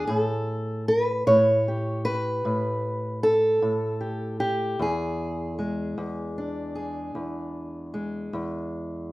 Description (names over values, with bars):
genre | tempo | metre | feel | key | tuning
acoustic country blues, solo or duo | 51 BPM (dotted quarters) | 12/8 | straight | E mixolydian | A4 = 441 Hz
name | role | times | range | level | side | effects
fingerpicked steel-string acoustic guitar | solo | 0.0-9.1 s | E2 to C#5 | -24 LUFS | equal | slapback echo
room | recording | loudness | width
moderate studio reverb, RT60 0.6 s | rough home demo mix | -24 LUFS | side -19 dB against mid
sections
0.0-9.1 A section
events
none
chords
0.1 A7; 4.8 E7